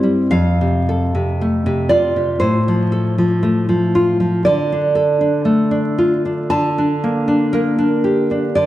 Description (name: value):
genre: romantic piece for solo classical guitar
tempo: 59 BPM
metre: 2/4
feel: rubato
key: F major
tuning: A4 = 440 Hz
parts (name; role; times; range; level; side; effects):
- nylon-string guitar; solo; 0.0-8.7 s; F2 to A5; -14 LUFS; equal; none
room: wet recital hall reverb, RT60 1.6 s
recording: vinyl crackle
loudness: -14 LUFS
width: side -14 dB against mid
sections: 0.0-8.7 A section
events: none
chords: 0.3 F; 2.4 F/A; 4.5 Dm; 6.5 Gm/D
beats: | 0.32 1.40 | 2.42 3.43 | 4.45 5.46 | 6.52 7.54 | 8.57